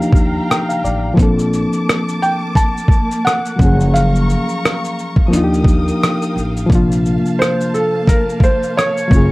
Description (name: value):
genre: lo-fi hip hop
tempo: 87 BPM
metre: 4/4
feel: swing 56% on 16ths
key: Bb major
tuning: A4 = 437 Hz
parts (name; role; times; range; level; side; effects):
- felt-muted upright piano; melody; 0.0-9.3 s; A4 to A5; -19 LUFS; right 1 dB; none
- reed electric piano; accompaniment; 0.0-9.3 s; C3 to G5; -18 LUFS; left 1 dB; cassette tape
- warm studio string section; sustained chords; 0.0-9.3 s; Bb3 to Eb6; -25 LUFS; equal; none
- upright bass; bass; 0.0-9.3 s; Gb1 to Eb2; -18 LUFS; equal; none
- dusty soul sampler-style drum kit; drums; 0.0-9.3 s; hi-hat, kick drum, rim click, shaker; -14 LUFS; equal; overdrive
room: light reverb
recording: vinyl crackle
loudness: -13 LUFS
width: side -21 dB against mid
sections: 0.0-9.3 A section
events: reed electric piano fill 0.1-1.2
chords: 0.0 Ebmaj9; 1.2 Bbmaj7; 3.6 Gbmaj7; 5.3 Ebmaj9; 6.7 Bbmaj7